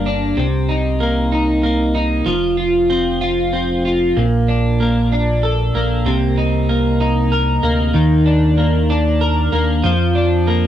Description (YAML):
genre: six-eight pop ballad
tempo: 63 BPM (dotted quarters)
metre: 6/8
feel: straight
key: Bb major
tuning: A4 = 440 Hz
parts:
  - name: twelve-string electric guitar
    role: accompaniment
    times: 0.0-10.7 s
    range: G2 to Bb4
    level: -15 LUFS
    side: equal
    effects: double-tracked left and right, cassette tape
  - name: round analog bass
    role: bass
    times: 0.0-10.7 s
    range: F1 to F2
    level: -20 LUFS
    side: equal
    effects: none
room: digital ambience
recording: home recording on cassette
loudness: -14 LUFS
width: side -11 dB against mid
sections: 0.0-4.2 A section; 4.2-10.7 B section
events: none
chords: 0.4 Cm7; 2.3 F5; 4.2 Bbmaj7; 6.1 Cm7; 8.0 Eb5; 9.8 Bb/F